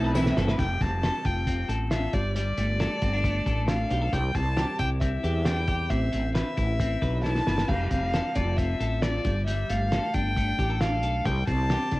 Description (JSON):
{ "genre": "jangly indie pop", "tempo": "135 BPM", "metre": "4/4", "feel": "straight", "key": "unclear", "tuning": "A4 = 439 Hz", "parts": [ { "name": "warm violin", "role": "melody", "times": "0.0-12.0 s", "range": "D5 to A5", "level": "-31 LUFS", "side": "equal", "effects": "cassette tape" }, { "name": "fingerpicked plugged-in steel-string acoustic guitar", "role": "accompaniment", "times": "0.0-0.6 s", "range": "A2 to B4", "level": "-28 LUFS", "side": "right 2 dB", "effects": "none" }, { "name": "clean electric guitar", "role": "arpeggios", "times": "0.0-12.0 s", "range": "G3 to B4", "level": "-31 LUFS", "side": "left 2 dB", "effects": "wide subtle chorus" }, { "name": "woody fretless electric bass", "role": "bass", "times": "0.0-12.0 s", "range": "F1 to E2", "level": "-27 LUFS", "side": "equal", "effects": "none" }, { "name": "cloth-damped thuddy drum kit", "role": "drums", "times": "0.2-12.0 s", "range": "crash cymbal, hi-hat, kick drum, snare drum", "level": "-30 LUFS", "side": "equal", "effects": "cassette tape" }, { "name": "tambourine", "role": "percussion", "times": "0.2-0.5 s", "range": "none", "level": "-48 LUFS", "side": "right 7 dB", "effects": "none" } ], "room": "moderate booth ambience, RT60 0.2 s", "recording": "home recording on cassette, vinyl crackle", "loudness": "-24 LUFS", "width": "side -19 dB against mid", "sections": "0.6-12.0 A section", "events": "drum fill 0.1-0.6, 7.2-7.7", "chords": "0.0 Amadd9; 0.6 Fadd9; 2.1 Gsus2; 4.1 C; 5.9 Amadd9; 7.7 Fadd9; 9.2 Gsus2; 11.3 C5", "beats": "0.15 | 0.59 1.03 1.47 1.91 | 2.35 2.80 3.24 3.68 | 4.13 4.57 5.02 5.46 | 5.91 6.35 6.80 7.24 | 7.69 8.13 8.58 9.03 | 9.47 9.92 10.36 10.81 | 11.25 11.70" }